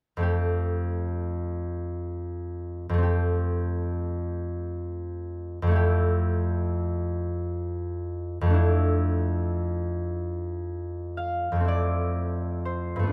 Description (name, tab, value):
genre	classical, solo harp piece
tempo	37-45 BPM (dotted quarters)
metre	6/8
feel	rubato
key	F major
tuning	A4 = 440 Hz
part	concert harp	solo	0.2-13.1 s	F2 to F5	-27 LUFS	equal	none
room	little or no reverb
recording	close, detailed microphones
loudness	-28 LUFS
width	mono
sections	0.3-11.7 A section; 11.7-13.1 B section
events	none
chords	0.3 Fadd9; 5.8 Fmaj9; 8.6 Dmadd9/F; 11.7 Fmaj7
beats	| 0.28 1.71 | 3.08 4.44 | 5.79 7.16 | 8.58 10.10 | 11.67